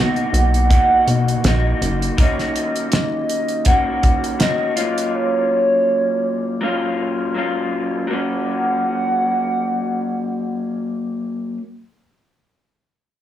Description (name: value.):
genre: indie pop, bedroom pop.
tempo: 81 BPM.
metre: 4/4.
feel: swing 55% on 16ths.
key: F# major.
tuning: A4 = 440 Hz.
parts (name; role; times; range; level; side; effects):
hollow clarinet-like synth lead; melody; 0.0-11.3 s; C#5 to F#5; -20 LUFS; right 1 dB; lush chorus, slapback echo.
electric guitar through a small old amp; accompaniment; 0.0-11.6 s; B2 to F#4; -22 LUFS; left 1 dB; wide subtle chorus, vibrato effect.
plucky analog bass; bass; 0.0-2.1 s; F#1 to B2; -17 LUFS; equal; none.
damped 70s drum kit; drums; 0.2-5.1 s; hi-hat, kick drum, snare drum; -18 LUFS; equal; none.
room: moderate small room reverb, RT60 0.6 s.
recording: small room ambience.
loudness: -16 LUFS.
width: side -11 dB against mid.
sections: 0.0-8.1 A section; 8.1-11.1 B section.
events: none.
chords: 0.0 Bmaj7; 2.2 D#m7; 4.8 F#maj7.